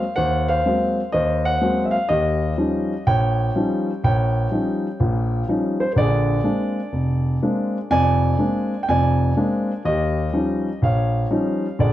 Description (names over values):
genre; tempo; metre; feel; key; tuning
solo jazz; 124 BPM; 4/4; swing 67% on 8ths; unclear; A4 = 439 Hz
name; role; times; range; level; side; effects
warm concert grand piano; solo; 0.0-11.9 s; F1 to Ab5; -18 LUFS; equal; slapback echo
room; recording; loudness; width
small room ambience; dry, close 1970s-style studio recording; -18 LUFS; side -13 dB against mid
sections
0.0-11.9 A section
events
none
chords
0.0 Ab9; 2.1 Eb9; 6.0 Bb9; 9.8 Eb9